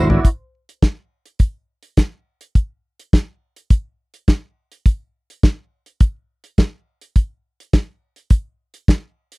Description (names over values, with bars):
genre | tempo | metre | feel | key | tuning
disco | 104 BPM | 4/4 | straight | none | none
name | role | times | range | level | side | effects
damped 70s drum kit | drums | 0.1-9.4 s | hi-hat, kick drum, snare drum, toms | -13 LUFS | equal | none
room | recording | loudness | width
little or no reverb | dry, close 1970s-style studio recording | -18 LUFS | side -26 dB against mid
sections
0.2-9.4 A section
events
drum fill 0.0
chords
none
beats
| 0.25 0.82 1.40 1.98 | 2.55 3.13 3.71 4.28 | 4.86 5.43 6.01 6.58 | 7.16 7.73 8.31 8.88